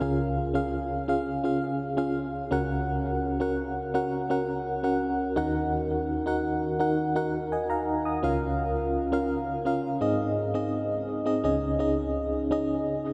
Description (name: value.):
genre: pop.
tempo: 84 BPM.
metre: 4/4.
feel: straight.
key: Db major.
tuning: A4 = 440 Hz.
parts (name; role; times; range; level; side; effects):
FM electric piano with tremolo; solo; 0.0-13.1 s; Db2 to Eb6; -28 LUFS; equal; tape echo.
room: wet huge ambient reverb, RT60 7.0 s.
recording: dreamy mix soaked in reverb.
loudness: -28 LUFS.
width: mono.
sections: 0.0-11.4 A section; 11.4-13.1 B section.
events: none.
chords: 0.0 Db; 2.5 Gb/Db; 5.4 Ebm; 8.2 Bbm/Db; 10.0 Ab; 11.4 Dbsus2.